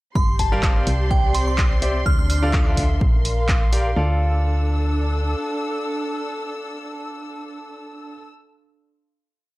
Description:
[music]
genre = piano house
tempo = 126 BPM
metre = 4/4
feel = swing 54% on 16ths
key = D minor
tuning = A4 = 439 Hz
[part]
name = glassy synth bell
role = melody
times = 0.2-2.7 s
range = G5 to F6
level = -27 LUFS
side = right 2 dB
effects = chorus, phaser, analog delay
[part]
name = rich studio violin section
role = sustained chords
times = 0.2-4.0 s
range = C6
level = -34 LUFS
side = left 1 dB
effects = sidechain pumping
[part]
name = solid FM bass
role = bass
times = 0.2-5.4 s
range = G1 to D2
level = -21 LUFS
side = equal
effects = sidechain pumping
[part]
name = electronic kick drum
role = drums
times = 0.2-3.6 s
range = none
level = -20 LUFS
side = equal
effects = studio reverb
[part]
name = muted studio string section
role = texture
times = 0.2-8.3 s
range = C4 to E6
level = -28 LUFS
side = equal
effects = sidechain pumping
[part]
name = punchy analog drum machine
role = drums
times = 0.4-3.8 s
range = handclaps, hi-hat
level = -27 LUFS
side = equal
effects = studio reverb
[part]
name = bright concert grand piano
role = riff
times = 0.5-8.1 s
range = D3 to F5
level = -28 LUFS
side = equal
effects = sidechain pumping, analog delay
[sound]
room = studio reverb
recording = dry, gritty hardware recording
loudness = -18 LUFS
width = side -19 dB against mid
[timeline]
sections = 0.2-4.0 breakdown; 4.0-7.8 final chord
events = none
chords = 0.2 Gm7; 0.9 Cadd9; 2.1 Dm; 3.0 Bb6; 4.0 Dm

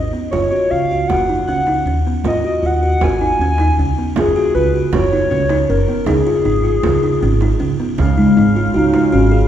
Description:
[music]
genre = contemporary instrumental, chamber music in an uneven meter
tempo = 157 BPM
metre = 5/4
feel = straight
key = unclear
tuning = A4 = 440 Hz
[part]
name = pure sine lead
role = melody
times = 0.0-9.5 s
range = G#3 to G#5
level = -17 LUFS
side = left 2 dB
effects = chorus
[part]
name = buzzing kalimba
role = arpeggios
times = 0.0-9.4 s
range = B3 to G#4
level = -19 LUFS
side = equal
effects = none
[part]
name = upright bass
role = bass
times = 0.0-9.4 s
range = F#1 to D#2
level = -18 LUFS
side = right 2 dB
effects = none
[part]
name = frame drum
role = percussion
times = 0.3-9.2 s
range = none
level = -25 LUFS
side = right 3 dB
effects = none
[part]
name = mellow woodwind section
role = sustained chords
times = 8.0-9.5 s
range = C#3 to E#5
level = -22 LUFS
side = left 3 dB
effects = none
[sound]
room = wet church reverb, RT60 2.9 s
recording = recorded in a church or concert hall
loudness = -13 LUFS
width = side -10 dB against mid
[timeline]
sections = 0.0-8.0 A section; 8.0-9.5 B section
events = none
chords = 0.3 F#5; 2.2 G#7(no3); 4.2 F#5; 6.1 C#add9; 8.0 C#

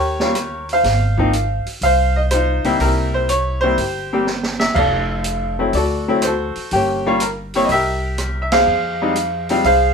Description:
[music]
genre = jazz piano trio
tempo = 123 BPM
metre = 4/4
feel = swing 69% on 8ths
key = F minor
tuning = A4 = 435 Hz
[part]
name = bright upright piano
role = melody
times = 0.0-9.9 s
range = F3 to F5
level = -17 LUFS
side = equal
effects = none
[part]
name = upright bass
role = bass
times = 0.0-9.9 s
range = F1 to F2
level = -22 LUFS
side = equal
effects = none
[part]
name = open jazz drum kit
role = drums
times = 0.2-9.8 s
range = crash cymbal, hi-hat, kick drum, ride cymbal, rim click, snare drum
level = -26 LUFS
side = right 2 dB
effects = none
[sound]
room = moderate studio reverb, RT60 0.6 s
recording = band playing live in one room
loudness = -16 LUFS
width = side -5 dB against mid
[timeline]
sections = 0.0-9.9 A section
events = drum fill 4.3-4.8; band accent 8.4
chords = 0.0 Eb7; 0.8 Ab6; 2.8 C7; 4.8 F6; 5.7 D7; 6.7 Gdim; 7.7 C7; 8.7 Fm

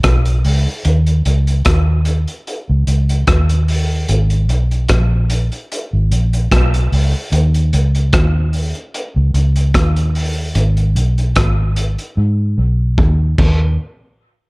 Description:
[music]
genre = dub reggae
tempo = 74 BPM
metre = 4/4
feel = swing 55% on 16ths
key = unclear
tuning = A4 = 438 Hz
[part]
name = vintage muted fingered electric bass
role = bass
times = 0.0-13.8 s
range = Ab1 to Ab2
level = -13 LUFS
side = equal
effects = none
[part]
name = crunchy breakbeat drum kit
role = drums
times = 0.0-13.6 s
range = crash cymbal, hi-hat, kick drum, rim click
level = -18 LUFS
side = equal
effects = none
[sound]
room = little or no reverb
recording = none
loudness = -13 LUFS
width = side -27 dB against mid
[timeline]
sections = 0.0-13.8 A section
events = drum fill 12.2-13.8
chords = none

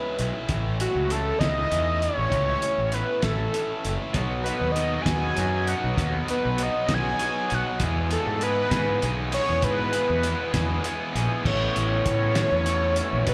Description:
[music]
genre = indie rock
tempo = 66 BPM (dotted quarters)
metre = 6/8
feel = straight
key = unclear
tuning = A4 = 440 Hz
[part]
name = fat analog lead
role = melody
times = 0.0-13.3 s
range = F#4 to G#5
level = -28 LUFS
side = equal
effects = none
[part]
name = overdriven electric guitar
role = riff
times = 0.0-13.3 s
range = E2 to G#4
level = -34 LUFS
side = equal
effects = none
[part]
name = fuzz fingered electric bass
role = bass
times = 0.2-13.3 s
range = F#1 to A2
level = -30 LUFS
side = equal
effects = overdrive
[part]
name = cloth-damped thuddy drum kit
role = drums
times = 0.2-13.3 s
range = crash cymbal, hi-hat, kick drum, snare drum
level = -32 LUFS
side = equal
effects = none
[part]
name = raw garage guitar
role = riff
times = 4.1-13.3 s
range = E2 to A4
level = -33 LUFS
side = equal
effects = overdrive, subtle chorus, slapback echo, analog delay
[sound]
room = little or no reverb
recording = live gig heard through the venue's PA, club reverb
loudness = -25 LUFS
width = mono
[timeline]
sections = 0.0-11.5 A section; 11.5-13.3 B section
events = analog synth lead solo 11.5-13.3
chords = 0.5 A; 4.1 B; 7.8 E; 11.5 Asus2

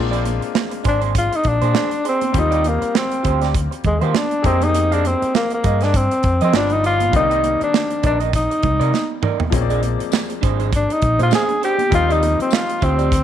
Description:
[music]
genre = lush 1970s-style soul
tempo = 100 BPM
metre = 4/4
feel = swing 58% on 16ths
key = unclear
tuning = A4 = 440 Hz
[part]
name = clear grand piano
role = accompaniment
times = 0.0-13.2 s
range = D3 to D5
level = -27 LUFS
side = left 12 dB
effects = none
[part]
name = hollow-body short-scale fingered electric bass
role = bass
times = 0.0-13.2 s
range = G1 to F3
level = -20 LUFS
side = left 1 dB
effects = none
[part]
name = electric guitar through a small old amp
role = riff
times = 0.1-13.2 s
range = D4 to F5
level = -26 LUFS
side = right 12 dB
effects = wide subtle chorus
[part]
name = modern studio drum kit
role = drums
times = 0.1-13.2 s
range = hi-hat, kick drum, snare drum, toms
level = -21 LUFS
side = right 3 dB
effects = none
[part]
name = congas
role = percussion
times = 0.3-12.7 s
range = none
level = -30 LUFS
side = right 13 dB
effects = none
[part]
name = mellow tenor saxophone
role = melody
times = 0.9-13.2 s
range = Ab3 to Ab4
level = -19 LUFS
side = left 1 dB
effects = slapback echo
[part]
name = tambourine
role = percussion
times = 10.1-12.7 s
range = none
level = -35 LUFS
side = left 15 dB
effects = none
[sound]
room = light reverb, studio ambience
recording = 1960s-style stereo with parts hard left and right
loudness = -15 LUFS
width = side -10 dB against mid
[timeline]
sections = 0.0-13.2 A section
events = tenor saxophone solo 0.0-13.2; drum fill 8.9-9.5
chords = 0.0 Bb9; 2.3 Eb69; 4.4 Fm11; 6.5 G7; 7.1 Cm9; 9.5 Bb9; 11.9 Eb69

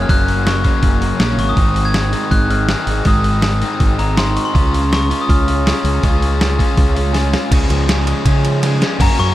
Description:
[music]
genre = indie rock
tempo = 162 BPM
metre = 4/4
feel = straight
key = unclear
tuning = A4 = 440 Hz
[part]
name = glockenspiel with soft plastic mallets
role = melody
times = 0.0-9.3 s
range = Bb5 to Ab6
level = -21 LUFS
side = left 2 dB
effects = analog delay
[part]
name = crunchy overdriven guitar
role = riff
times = 0.0-9.3 s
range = Gb2 to Gb4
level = -21 LUFS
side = left 6 dB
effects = none
[part]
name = raw garage guitar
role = riff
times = 0.0-9.3 s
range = Gb2 to Gb4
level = -24 LUFS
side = right 6 dB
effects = overdrive, wide subtle chorus
[part]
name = fingered electric bass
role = bass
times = 0.0-9.3 s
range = Gb1 to Db3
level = -17 LUFS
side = equal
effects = none
[part]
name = boom bap sampler-style drum kit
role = drums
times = 0.1-9.1 s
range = crash cymbal, hi-hat, kick drum, ride cymbal, snare drum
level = -17 LUFS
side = equal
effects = none
[sound]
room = little or no reverb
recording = dark, warm production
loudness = -13 LUFS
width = side -14 dB against mid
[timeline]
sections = 0.0-7.5 A section; 7.5-9.0 B section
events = drum fill 7.1-7.5, 8.6-9.0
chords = 0.0 Gb; 1.6 Ab; 4.5 Db

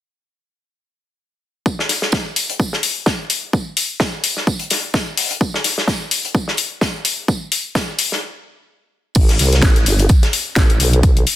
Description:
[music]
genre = bass house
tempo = 128 BPM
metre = 4/4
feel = swing 57% on 16ths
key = A minor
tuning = A4 = 441 Hz
[part]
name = electronic kick drum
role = drums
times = 1.7-11.1 s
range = none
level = -16 LUFS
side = equal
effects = overdrive, high-pass filter on kick, studio ambience
[part]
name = loose indie drum kit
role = drums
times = 1.7-11.4 s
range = hi-hat, snare drum, tambourine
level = -23 LUFS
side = equal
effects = sidechain pumping on hats, high-pass filter on hats, studio ambience, high-pass filter on snare, sidechain pumping on perc, high-pass filter on perc, high-pass filter on room
[part]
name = house drum kit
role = drums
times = 1.9-11.4 s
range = crash cymbal, hi-hat, snare drum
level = -18 LUFS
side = left 4 dB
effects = overdrive, studio ambience
[part]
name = vowel-sweep wobble bass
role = bass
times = 9.2-11.3 s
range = G1 to C2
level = -15 LUFS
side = equal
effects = chorus, tube saturation, sidechain pumping
[sound]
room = small room ambience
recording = dense, heavily limited modern master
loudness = -15 LUFS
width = side -14 dB against mid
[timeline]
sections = 1.7-9.2 A section; 9.2-11.4 B section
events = stop 8.2-9.2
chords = none

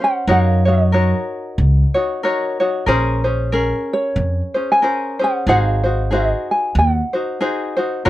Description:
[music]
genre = Hawaiian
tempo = 92 BPM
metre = 4/4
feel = swing 57% on 8ths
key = unclear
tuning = A4 = 439 Hz
[part]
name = ukulele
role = melody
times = 0.0-7.8 s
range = Db5 to Ab5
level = -18 LUFS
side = right 1 dB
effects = none
[part]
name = tenor ukulele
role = accompaniment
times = 0.0-8.1 s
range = Db4 to Db5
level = -19 LUFS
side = left 1 dB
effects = none
[part]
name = upright bass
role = bass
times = 0.3-8.1 s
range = Gb1 to Gb2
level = -16 LUFS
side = equal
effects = none
[sound]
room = little or no reverb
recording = dry, close 1970s-style studio recording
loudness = -15 LUFS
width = side -15 dB against mid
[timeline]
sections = 0.0-8.1 A section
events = none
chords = 0.3 Gb6; 2.9 Bbm9; 5.5 Ab7

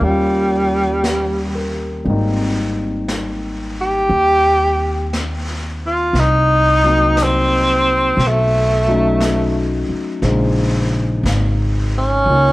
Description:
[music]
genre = jazz ballad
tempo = 59 BPM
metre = 4/4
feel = swing 68% on 8ths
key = unclear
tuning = A4 = 438 Hz
[part]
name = warm tenor saxophone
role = melody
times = 0.0-12.5 s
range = G3 to G4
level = -15 LUFS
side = equal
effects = cassette tape
[part]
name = warm concert grand piano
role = accompaniment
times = 0.0-12.5 s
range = Db3 to C5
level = -22 LUFS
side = left 2 dB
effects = none
[part]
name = upright bass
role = bass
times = 0.0-12.5 s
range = Ab1 to Eb2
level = -19 LUFS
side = equal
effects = none
[part]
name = vintage brush drum kit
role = drums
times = 0.0-12.5 s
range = brushed snare drum, hi-hat, snare drum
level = -28 LUFS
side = equal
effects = cassette tape
[sound]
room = light reverb, studio ambience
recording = home recording on cassette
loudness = -14 LUFS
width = side -18 dB against mid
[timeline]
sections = 0.0-12.5 A section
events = none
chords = 0.0 Eb9; 2.0 Abmaj7; 6.1 Cm7b5; 8.2 B9; 10.2 Bbm11

